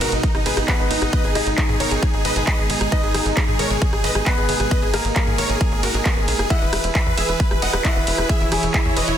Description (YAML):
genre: uplifting trance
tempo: 134 BPM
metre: 4/4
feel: straight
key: G# minor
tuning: A4 = 440 Hz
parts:
  - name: supersaw chords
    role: melody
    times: 0.0-9.2 s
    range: B3 to F#5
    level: -24 LUFS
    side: equal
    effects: sidechain pumping, tape echo
  - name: wide unison pluck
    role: second line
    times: 0.0-9.2 s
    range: D#4 to F#5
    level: -32 LUFS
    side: equal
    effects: none
  - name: dark chamber string section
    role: sustained chords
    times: 0.0-9.2 s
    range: B2 to C#5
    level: -28 LUFS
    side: right 2 dB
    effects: sidechain pumping
  - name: tight sequencer bass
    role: bass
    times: 0.0-9.1 s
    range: E1 to G#2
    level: -26 LUFS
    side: equal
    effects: sidechain pumping
  - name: punchy analog drum machine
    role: drums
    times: 0.0-9.2 s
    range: handclaps, hi-hat, ride cymbal, rim click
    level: -24 LUFS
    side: right 1 dB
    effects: sidechain pumping on hats, sidechain pumping on cymbals
  - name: electronic kick drum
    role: drums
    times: 0.2-8.8 s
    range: none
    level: -20 LUFS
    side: equal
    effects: overdrive
  - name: warm grand piano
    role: second line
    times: 0.7-9.2 s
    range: A#3 to G#5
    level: -27 LUFS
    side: left 2 dB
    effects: digital delay
room: light reverb, digital ambience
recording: dense, heavily limited modern master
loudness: -17 LUFS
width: side -10 dB against mid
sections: 0.0-9.2 A section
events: none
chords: 0.0 G#m; 6.5 E